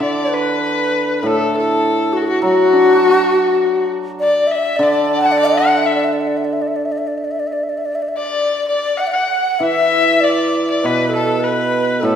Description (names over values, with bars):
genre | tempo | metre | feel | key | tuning
chinese traditional, Chinese chamber ensemble | 100 BPM | 4/4 | rubato | D gong mode | A4 = 440 Hz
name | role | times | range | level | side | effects
mellow xiao | melody | 0.0-12.2 s | F#4 to F#5 | -17 LUFS | left 1 dB | none
rich erhu | second line | 0.0-12.2 s | F#4 to A5 | -18 LUFS | left 4 dB | none
hammered dulcimer | accompaniment | 0.0-12.2 s | A2 to D4 | -19 LUFS | right 2 dB | none
room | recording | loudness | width
wet scoring stage reverb, RT60 1.9 s | recorded in a church or concert hall | -14 LUFS | side -8 dB against mid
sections
0.0-9.6 A section; 9.6-12.2 B section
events
none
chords
none